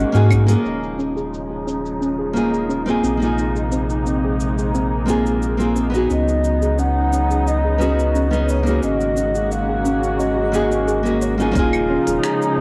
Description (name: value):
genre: sunset chillout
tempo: 88 BPM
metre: 4/4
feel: straight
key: Eb minor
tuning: A4 = 440 Hz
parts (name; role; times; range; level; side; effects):
- mellow hollow baroque flute; melody; 0.0-0.3, 6.1-12.6 s; F4 to Gb5; -26 LUFS; equal; cassette tape, tape echo
- nylon-string guitar; accompaniment; 0.0-12.6 s; Bb3 to Ab4; -24 LUFS; equal; cassette tape, tape echo
- muted studio string section; sustained chords; 0.0-12.6 s; C3 to Gb4; -27 LUFS; equal; low-pass filter, cassette tape
- soft round pluck; arpeggios; 0.0-12.6 s; C4 to Db5; -28 LUFS; equal; chorus, cassette tape, tape echo
- warm sub bass; bass; 0.0-12.6 s; Eb1 to Ab2; -24 LUFS; equal; none
- deep house drum kit; drums; 0.1-12.5 s; cabasa, claves, finger snaps, hi-hat; -35 LUFS; equal; low-pass filter on hats, cassette tape, low-pass filter on perc, low-pass filter on snare, low-pass filter on room
- electronic kick drum; drums; 0.3-0.4, 11.6-11.7 s; none; -24 LUFS; equal; cassette tape
room: moderate spring reverb, RT60 1.7 s, small room ambience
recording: home recording on cassette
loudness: -19 LUFS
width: mono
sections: 0.6-11.6 A section; 11.6-12.6 B section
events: filter sweep on string section 0.6-11.6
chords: 0.0 Ab9sus4; 0.6 Eb9sus4; 3.0 Bb9sus4; 6.1 Db9sus4; 8.8 Ab9sus4; 11.6 Eb9sus4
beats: | 0.65 1.33 2.01 2.69 | 3.38 4.06 4.74 5.42 | 6.10 6.78 7.46 8.15 | 8.83 9.51 10.19 10.88 | 11.56 12.24